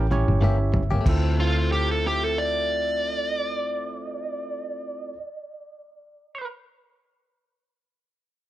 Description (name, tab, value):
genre	straight-eighth soul blues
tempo	92 BPM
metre	4/4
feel	swing 55% on 16ths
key	D minor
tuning	A4 = 441 Hz
part	bell-like tine electric piano	accompaniment	0.0-5.2 s	C4 to G5	-31 LUFS	right 4 dB	plate reverb
part	vintage muted fingered electric bass	bass	0.0-5.1 s	G1 to D2	-24 LUFS	equal	none
part	direct-recorded clean electric guitar	stabs	0.1-5.2 s	E3 to G4	-34 LUFS	left 6 dB	plate reverb
part	cloth-damped thuddy drum kit	drums	0.1-1.2 s	crash cymbal, kick drum, toms	-27 LUFS	equal	none
part	dark smooth lead guitar	melody	1.4-6.5 s	F4 to D5	-27 LUFS	right 1 dB	overdrive
room	light reverb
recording	none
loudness	-22 LUFS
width	side -14 dB against mid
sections	0.0-1.1 A section; 1.1-6.3 B section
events	tine electric piano fill 0.0-1.1; drum fill 0.0-1.1; slowing down 0.0-1.1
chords	0.0 A7b9; 1.1 Dm7